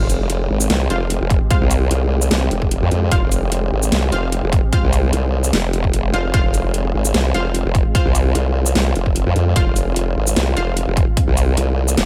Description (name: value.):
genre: heavy wobble dubstep.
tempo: 149 BPM.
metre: 4/4.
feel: half-time.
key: F minor.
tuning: A4 = 440 Hz.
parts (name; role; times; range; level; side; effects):
supersaw chords; sustained chords; 0.0-12.1 s; Ab3 to G4; -29 LUFS; equal; sidechain pumping, low-pass filter.
formant-sweep wobble bass; bass; 0.0-12.0 s; F1 to F2; -21 LUFS; equal; chorus, overdrive.
dubstep drum kit; drums; 0.1-12.1 s; hi-hat, shaker, snare drum; -24 LUFS; equal; none.
formant-sweep wobble bass; bass; 0.7-12.1 s; F1 to F2; -20 LUFS; equal; chorus, overdrive.
orchestra-hit-like synth stab; stabs; 0.9-10.7 s; F4 to F5; -30 LUFS; equal; built-in reverb, dub echo.
electronic kick drum; drums; 1.3-11.3 s; none; -20 LUFS; equal; none.
room: little or no reverb.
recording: none.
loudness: -17 LUFS.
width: mono.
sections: 0.0-12.1 A section.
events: none.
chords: 0.0 Fm.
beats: 0.30 0.70 1.10 | 1.51 1.91 2.31 2.71 | 3.12 3.52 3.92 4.32 | 4.73 5.13 5.53 5.93 | 6.34 6.74 7.14 7.55 | 7.95 8.35 8.75 9.16 | 9.56 9.96 10.37 10.77 | 11.17 11.57 11.97.